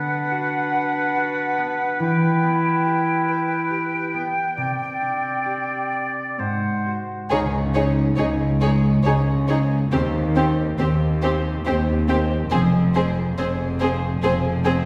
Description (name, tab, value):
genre	cinematic, emotional film score for orchestra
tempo	70 BPM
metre	3/4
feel	rubato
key	E minor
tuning	A4 = 440 Hz
part	bright small flute group	second line	0.0-7.0 s	F#5 to G5	-28 LUFS	equal	none
part	clear clarinet	second line	0.0-7.0 s	G#3 to E4	-29 LUFS	equal	none
part	clear oboe	second line	0.0-7.0 s	B4 to D5	-29 LUFS	equal	none
part	concert harp	arpeggios	0.0-14.9 s	G#2 to Eb5	-29 LUFS	equal	none
part	warm symphonic violin section	melody	7.3-14.7 s	C5 to Db5	-31 LUFS	equal	none
part	dark studio violin section	second line	7.3-14.7 s	G4 to Ab4	-30 LUFS	equal	none
part	dark studio viola section	accompaniment	7.3-14.7 s	C4 to Eb4	-30 LUFS	equal	none
part	warm studio cello section	bass	7.3-14.9 s	Db2 to F2	-26 LUFS	equal	none
part	warm studio double bass section	bass	7.3-14.9 s	F1 to Eb2	-25 LUFS	equal	none
room	wet scoring stage reverb, RT60 1.7 s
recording	heard from further back in the room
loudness	-21 LUFS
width	mono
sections	0.0-7.3 A section; 7.3-14.9 A section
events	none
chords	0.0 Bm/D; 2.0 Em; 4.6 Csus2; 6.4 G#7; 7.3 Dbsus2; 9.9 Cm/Eb; 12.5 Fm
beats	0.31 1.16 | 2.00 2.85 3.71 | 4.58 5.47 6.40 | 7.32 8.19 9.06 | 9.92 10.80 11.66 | 12.51 13.37 14.22